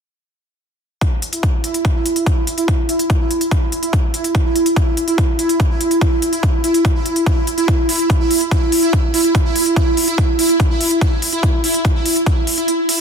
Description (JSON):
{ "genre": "psychedelic trance", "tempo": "144 BPM", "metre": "4/4", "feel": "straight", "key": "unclear", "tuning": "A4 = 444 Hz", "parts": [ { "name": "pulsing gated texture", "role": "sustained chords", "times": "1.3-13.0 s", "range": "E4", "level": "-17 LUFS", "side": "right 2 dB", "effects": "chorus, built-in reverb, sidechain pumping" }, { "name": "electronic hi-hat", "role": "drums", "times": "1.0-13.0 s", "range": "none", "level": "-22 LUFS", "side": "left 1 dB", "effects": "none" }, { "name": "electronic kick drum", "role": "drums", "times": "1.0-12.3 s", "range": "none", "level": "-16 LUFS", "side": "equal", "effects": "none" } ], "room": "light reverb", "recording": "dense, heavily limited modern master", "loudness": "-14 LUFS", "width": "side -6 dB against mid", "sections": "1.0-13.0 A section", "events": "kick drops out 12.7-13.0", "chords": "none" }